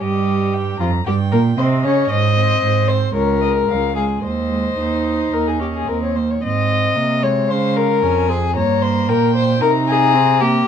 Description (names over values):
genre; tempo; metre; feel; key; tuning
quick classical-period movement for string quartet; 113 BPM; 4/4; rubato; Ab major; A4 = 440 Hz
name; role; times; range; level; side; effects
dark violin; melody; 0.0-10.7 s; C5 to Bb5; -25 LUFS; left 8 dB; none
dark violin; second line; 0.0-10.7 s; F4 to Eb5; -18 LUFS; left 5 dB; none
warm viola; accompaniment; 0.0-10.7 s; F3 to Eb4; -22 LUFS; right 3 dB; none
rich cello; bass; 0.0-10.7 s; Db2 to Db3; -19 LUFS; right 5 dB; none
room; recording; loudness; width
light reverb; dark, warm production; -15 LUFS; side -8 dB against mid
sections
0.0-10.7 A section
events
none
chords
0.0 Eb7; 2.1 Ab; 3.1 Db5; 4.2 Ab/Eb; 5.3 Eb5; 6.4 Ab; 7.5 Dbmaj7; 8.6 Gmadd11; 9.6 Cm7